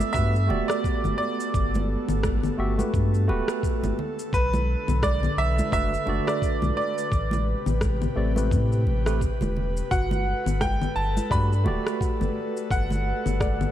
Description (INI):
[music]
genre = sunset chillout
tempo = 86 BPM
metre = 4/4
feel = swing 58% on 16ths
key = G major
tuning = A4 = 439 Hz
[part]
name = bright grand piano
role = melody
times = 0.0-13.7 s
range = B4 to B5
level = -28 LUFS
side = right 2 dB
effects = tape echo
[part]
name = airy breathy pad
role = sustained chords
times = 0.0-13.7 s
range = C3 to B4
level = -33 LUFS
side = equal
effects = chorus
[part]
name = warm sub bass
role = bass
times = 0.0-13.7 s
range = D1 to A2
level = -25 LUFS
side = equal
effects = tube saturation
[part]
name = electronic shaker, rim click and congas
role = drums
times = 0.0-13.7 s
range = none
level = -31 LUFS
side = left 3 dB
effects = overdrive, small room reverb
[part]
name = congas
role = percussion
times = 0.0-13.6 s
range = none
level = -34 LUFS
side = right 2 dB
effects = none
[part]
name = barky tine electric piano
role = accompaniment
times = 0.1-13.7 s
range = A3 to E5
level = -31 LUFS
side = moving between left 4 dB and right 6 dB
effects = auto-pan, tape echo
[part]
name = electronic kick drum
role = drums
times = 0.1-13.6 s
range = none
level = -28 LUFS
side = equal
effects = small room reverb
[part]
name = soft round pluck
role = arpeggios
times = 9.9-13.7 s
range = F#4 to D5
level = -36 LUFS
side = equal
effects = chorus, cassette tape, tape echo
[sound]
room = light reverb, digital ambience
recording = dark, warm production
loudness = -22 LUFS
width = side -11 dB against mid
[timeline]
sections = 0.0-13.7 A section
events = none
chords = 0.0 Gmaj9; 4.0 Bm7; 7.1 Am9; 9.9 Gmaj9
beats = 0.14 0.84 | 1.54 2.24 2.94 3.63 | 4.33 5.03 5.73 6.42 | 7.12 7.82 8.52 9.21 | 9.91 10.61 11.31 12.01 | 12.70 13.40